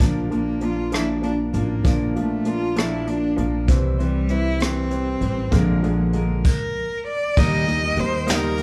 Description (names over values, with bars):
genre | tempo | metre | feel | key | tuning
six-eight pop ballad | 65 BPM (dotted quarters) | 6/8 | straight | unclear | A4 = 440 Hz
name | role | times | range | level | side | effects
warm grand piano | accompaniment | 0.0-8.6 s | D3 to Eb4 | -27 LUFS | equal | none
fingerpicked steel-string acoustic guitar | arpeggios | 0.0-8.6 s | Bb2 to C5 | -33 LUFS | equal | none
upright bass | bass | 0.0-8.6 s | A1 to Eb2 | -28 LUFS | equal | none
vintage brush drum kit | drums | 0.0-8.6 s | crash cymbal, hi-hat, kick drum, rim click, snare drum | -24 LUFS | equal | none
warm cello | melody | 0.3-8.6 s | F3 to Eb5 | -27 LUFS | equal | none
room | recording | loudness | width
wet large studio reverb, RT60 1.2 s | band playing live in one room | -21 LUFS | mono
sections
0.0-7.4 A section; 7.4-8.6 B section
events
stop 6.4-7.4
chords
0.0 Bb; 3.7 C; 5.5 Bb7; 7.4 Eb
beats
| 0.00 0.92 | 1.85 2.77 | 3.68 4.60 | 5.52 6.45 | 7.37 8.28